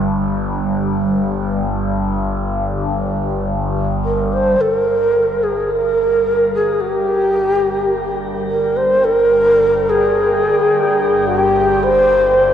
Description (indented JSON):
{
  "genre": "dark ambient drone",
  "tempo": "54 BPM",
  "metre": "4/4",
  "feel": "straight",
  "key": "G phrygian",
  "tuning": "A4 = 438 Hz",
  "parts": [
    { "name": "overtone-sweeping drone", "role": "drone", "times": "0.0-12.5 s", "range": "G1 to G2", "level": "-20 LUFS", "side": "equal", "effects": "chorus, built-in reverb, phaser" },
    { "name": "wind-like tuned noise texture", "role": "texture", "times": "0.0-4.6 s", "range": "D5", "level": "-44 LUFS", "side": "left 1 dB", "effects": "none" },
    { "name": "breathy long shakuhachi", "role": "melody", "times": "4.0-12.5 s", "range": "G4 to C5", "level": "-13 LUFS", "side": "equal", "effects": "shimmer reverb, ping-pong delay" },
    { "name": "deep dark ambient pad", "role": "sustained chords", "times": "7.2-12.5 s", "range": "Bb4 to G5", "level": "-23 LUFS", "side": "equal", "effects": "chorus, built-in reverb, shimmer reverb" }
  ],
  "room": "wet cathedral reverb, RT60 6.3 s",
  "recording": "worn, warbling old tape, cassette tape, warbly pitch drift",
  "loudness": "-14 LUFS",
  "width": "side -9 dB against mid",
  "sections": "0.0-4.6 A section; 4.6-12.5 B section",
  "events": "fade-in on synth drone 4.6-12.5; fade-in on ambient pad 4.6-12.5",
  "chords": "0.0 G5; 4.6 Gm"
}